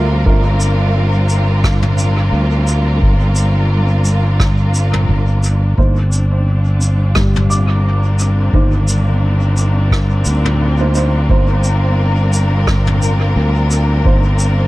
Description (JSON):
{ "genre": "ambient dub", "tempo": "87 BPM", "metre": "4/4", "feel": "swing 56% on 16ths", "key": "unclear", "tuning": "A4 = 439 Hz", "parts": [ { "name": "warm studio string section", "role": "sustained chords", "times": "0.0-14.7 s", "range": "G3 to Bb4", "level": "-20 LUFS", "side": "left 1 dB", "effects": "none" }, { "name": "felt-muted upright piano", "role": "arpeggios", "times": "0.0-14.7 s", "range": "D3 to D6", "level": "-26 LUFS", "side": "left 2 dB", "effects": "dub echo" }, { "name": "dark upright piano", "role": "stabs", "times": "0.0-0.4, 5.8-14.2 s", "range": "A3 to C5", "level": "-25 LUFS", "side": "right 4 dB", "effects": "dub echo" }, { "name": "fingered electric bass", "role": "bass", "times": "0.0-14.7 s", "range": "G1 to D2", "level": "-13 LUFS", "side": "equal", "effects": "none" }, { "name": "electronic kick drum", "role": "drums", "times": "0.3-14.2 s", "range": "none", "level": "-16 LUFS", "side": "equal", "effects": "none" }, { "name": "vintage brush drum kit", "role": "drums", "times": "0.6-14.5 s", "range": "rim click, shaker, toms", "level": "-24 LUFS", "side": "equal", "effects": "dub echo" } ], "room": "studio reverb", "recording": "echo-heavy mix", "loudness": "-11 LUFS", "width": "side -18 dB against mid", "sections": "0.0-14.7 A section", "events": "none", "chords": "0.0 Gm7; 5.8 Cm7/G", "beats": "| 0.26 0.95 1.64 2.33 | 3.02 3.71 4.40 5.09 | 5.78 6.47 7.16 7.85 | 8.54 9.22 9.91 10.60 | 11.29 11.98 12.67 13.36 | 14.05" }